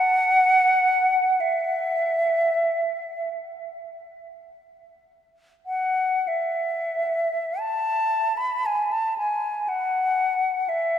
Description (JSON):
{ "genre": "classical, free, expressive piece for unaccompanied flute", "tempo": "20-43 BPM (dotted quarters)", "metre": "6/8", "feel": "rubato", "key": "unclear", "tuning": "A4 = 443 Hz", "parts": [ { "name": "mellow silver concert flute", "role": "solo", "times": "0.0-11.0 s", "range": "E5 to B5", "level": "-21 LUFS", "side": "equal", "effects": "none" } ], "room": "wet cathedral reverb, RT60 5.2 s", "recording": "minimal, uncompressed stereo recording", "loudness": "-20 LUFS", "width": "side -9 dB against mid", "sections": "0.0-5.7 A section; 5.7-11.0 A section", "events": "none", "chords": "none" }